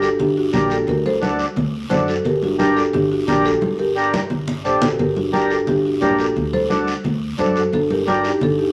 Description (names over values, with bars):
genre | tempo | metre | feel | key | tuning
latin, cumbia | 175 BPM | 4/4 | straight | G harmonic minor | A4 = 440 Hz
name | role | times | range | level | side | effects
marimba with soft mallets | melody | 0.0-8.7 s | D4 to C5 | -22 LUFS | equal | none
mellow accordion | accompaniment | 0.0-8.3 s | D4 to Bb4 | -23 LUFS | equal | none
upright bass | bass | 0.0-8.7 s | G1 to F#2 | -31 LUFS | equal | none
guiro | percussion | 0.0-8.7 s | none | -37 LUFS | equal | none
congas | percussion | 0.2-8.6 s | none | -26 LUFS | equal | none
room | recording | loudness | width
moderate studio reverb, RT60 0.7 s | none | -19 LUFS | mono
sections
0.0-8.7 A section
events
drum fill 3.6-5.0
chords
0.0 Gm; 0.9 D7; 2.2 Gm; 6.4 D7; 7.7 Gm